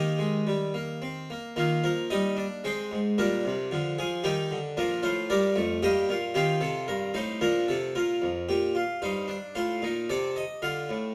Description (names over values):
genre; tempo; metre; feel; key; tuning
classical, baroque-style 4-part fugue for harpsichord; 112 BPM; 3/4; straight; Eb major; A4 = 440 Hz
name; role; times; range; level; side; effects
harpsichord; solo; 0.0-11.1 s; F2 to F5; -28 LUFS; equal; none
room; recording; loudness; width
moderate recital hall reverb, RT60 1.4 s; close, detailed microphones; -28 LUFS; mono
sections
0.0-1.6 A section; 1.6-8.0 B section; 8.0-11.1 A section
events
none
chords
0.0 Eb; 2.6 Ab; 3.2 Bb7; 4.2 Eb; 4.8 Bb; 5.8 Eb/G; 6.4 F7; 7.4 Bb; 8.0 Bb5; 9.0 Eb/G; 9.6 Adim; 10.6 Dm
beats
0.46 1.01 | 1.56 2.10 2.64 | 3.17 3.71 4.24 | 4.77 5.30 5.83 | 6.36 6.89 7.42 | 7.95 8.49 9.02 | 9.56 10.09 10.62